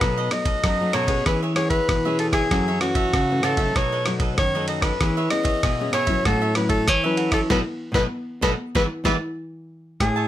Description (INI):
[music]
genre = samba and choro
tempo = 96 BPM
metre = 4/4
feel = straight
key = E major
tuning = A4 = 436 Hz
[part]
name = breathy soprano saxophone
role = melody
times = 0.0-10.3 s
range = F#4 to D#5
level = -24 LUFS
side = left 1 dB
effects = none
[part]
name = cavaquinho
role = accompaniment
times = 0.0-10.3 s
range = D#4 to A5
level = -29 LUFS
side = right 6 dB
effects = none
[part]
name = nylon-string guitar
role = accompaniment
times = 0.0-10.3 s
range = F#2 to G#4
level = -28 LUFS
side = left 3 dB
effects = none
[part]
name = nylon-string guitar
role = bass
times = 0.0-10.3 s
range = A2 to F#3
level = -26 LUFS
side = equal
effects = none
[part]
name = dusty soul sampler-style drum kit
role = drums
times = 0.0-10.2 s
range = hi-hat, kick drum, ride cymbal, rim click, snare drum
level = -24 LUFS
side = equal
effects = none
[sound]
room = little or no reverb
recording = close, detailed microphones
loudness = -19 LUFS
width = side -12 dB against mid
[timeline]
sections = 0.0-10.0 A section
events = band accent 7.5-10.0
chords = 0.0 B7; 1.3 E6; 2.5 F#m7; 3.8 B7; 5.0 E6; 6.3 A6; 7.5 B7; 8.8 E7